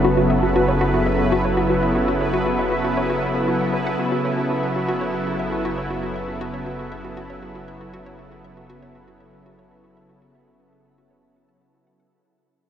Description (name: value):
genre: ambient, sequencer-driven space music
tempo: 118 BPM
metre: 4/4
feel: straight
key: F# minor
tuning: A4 = 440 Hz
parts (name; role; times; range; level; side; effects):
- lush unison pad; sustained chords; 0.0-12.1 s; C#3 to A4; -21 LUFS; equal; chorus, shimmer reverb
- hollow square pluck; riff; 0.0-12.0 s; F#4 to A5; -26 LUFS; left 1 dB; chorus, tape echo, shimmer reverb
- round analog bass; bass; 0.0-12.1 s; F#1; -31 LUFS; equal; none
- bubbling stepped-filter texture; texture; 0.0-12.1 s; B4; -30 LUFS; right 3 dB; chorus, built-in reverb, shimmer reverb
room: wet huge ambient reverb, RT60 7.4 s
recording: none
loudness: -19 LUFS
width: side -9 dB against mid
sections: 0.0-12.1 A section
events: fade-out on synth arpeggio sound 0.0-12.1; fade-out on analog synth bass 0.0-12.1; fade-out 0.0-12.1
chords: 0.0 F#m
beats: 0.43 0.94 1.45 | 1.95 2.46 2.97 3.48 | 3.99 4.50 5.00 5.51 | 6.02 6.53 7.04 7.55 | 8.05 8.56 9.07 9.58 | 10.09 10.60 11.11 11.61